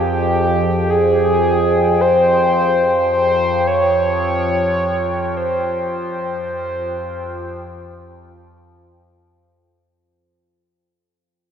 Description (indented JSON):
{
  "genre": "ambient",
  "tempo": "free time",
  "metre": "none",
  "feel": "none",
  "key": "F minor",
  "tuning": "A4 = 440 Hz",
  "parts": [
    { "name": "mellow horn-like synth lead", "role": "melody", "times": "0.0-8.8 s", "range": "G4 to Db5", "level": "-17 LUFS", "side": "right 1 dB", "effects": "chorus, cassette tape, diffuse ambient delay" },
    { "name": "dark analog pad", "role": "sustained chords", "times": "0.0-9.9 s", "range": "F4 to G5", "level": "-25 LUFS", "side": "left 1 dB", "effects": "chorus" },
    { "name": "overtone-sweeping drone", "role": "drone", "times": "0.0-10.0 s", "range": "F2 to F3", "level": "-20 LUFS", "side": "left 1 dB", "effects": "chorus, built-in reverb" }
  ],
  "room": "wet cathedral reverb, RT60 5.2 s",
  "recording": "in a vast, echoing space",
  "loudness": "-15 LUFS",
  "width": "side -8 dB against mid",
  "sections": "0.0-9.9 A section",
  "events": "fade-in on analog synth pad 0.0-9.9; fade-out 3.8-9.9",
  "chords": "0.0 Fmadd9",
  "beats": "free time"
}